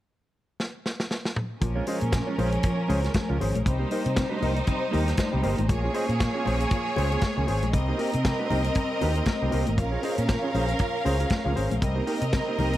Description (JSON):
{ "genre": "disco", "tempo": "118 BPM", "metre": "4/4", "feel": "swing 56% on 16ths", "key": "Bb dorian", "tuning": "A4 = 440 Hz", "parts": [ { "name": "tight funk drum kit", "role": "drums", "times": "0.6-12.8 s", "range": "hi-hat, kick drum, snare drum, toms", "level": "-28 LUFS", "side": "equal", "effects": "none" }, { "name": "clear studio string section", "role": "second line", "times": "1.6-12.8 s", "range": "F3 to F5", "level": "-29 LUFS", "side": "right 1 dB", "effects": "none" }, { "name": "mellow electric guitar", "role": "accompaniment", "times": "1.6-12.8 s", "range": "Ab3 to Eb5", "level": "-33 LUFS", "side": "right 5 dB", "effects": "none" }, { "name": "warm grand piano", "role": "accompaniment", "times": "1.6-12.8 s", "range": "Bb2 to C5", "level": "-32 LUFS", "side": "left 4 dB", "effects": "none" }, { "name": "fingered electric bass", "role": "bass", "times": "1.6-12.8 s", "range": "G1 to C3", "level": "-27 LUFS", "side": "equal", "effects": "none" }, { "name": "congas", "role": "percussion", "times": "2.1-12.7 s", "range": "none", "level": "-36 LUFS", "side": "left 5 dB", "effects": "none" } ], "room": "light reverb, studio reverb", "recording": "none", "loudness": "-23 LUFS", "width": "side -14 dB against mid", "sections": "0.0-1.6 A section; 1.6-12.8 B section", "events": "drum fill 0.6-1.6", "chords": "0.0 N.C.; 1.6 Bbm7; 3.7 Cm7; 5.7 Bbm7; 7.7 Cm7; 9.8 Bbm7; 11.8 Cm7" }